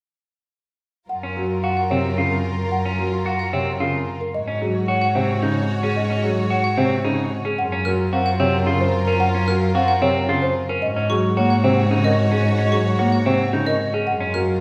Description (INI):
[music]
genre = classical, minimalist pattern music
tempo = 111 BPM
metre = 3/4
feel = straight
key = Gb lydian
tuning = A4 = 442 Hz
[part]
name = folk marimba with soft mallets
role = melody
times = 1.1-14.5 s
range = Ab4 to Gb5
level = -28 LUFS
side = equal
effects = none
[part]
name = rich studio string section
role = sustained chords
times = 1.1-14.6 s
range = F4 to Db5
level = -31 LUFS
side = equal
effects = none
[part]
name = rich double bass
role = bass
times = 1.1-14.6 s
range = Gb2 to Ab2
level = -25 LUFS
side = equal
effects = none
[part]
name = clean electric guitar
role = arpeggios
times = 1.2-14.4 s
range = C4 to Gb4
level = -27 LUFS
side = equal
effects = none
[part]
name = clear grand piano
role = accompaniment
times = 1.4-14.5 s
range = C3 to C4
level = -27 LUFS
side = equal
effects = none
[part]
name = xylophone with wooden mallets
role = arpeggios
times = 1.8-14.5 s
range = Eb5 to F6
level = -31 LUFS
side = equal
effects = none
[sound]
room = wet recital hall reverb, RT60 1.4 s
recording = heard from further back in the room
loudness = -20 LUFS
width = mono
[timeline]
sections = 1.1-14.6 A section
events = none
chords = 1.1 Gbmaj7; 4.3 Ab7sus4; 7.6 Gbmaj7; 10.8 Ab7sus4; 14.1 Gbmaj7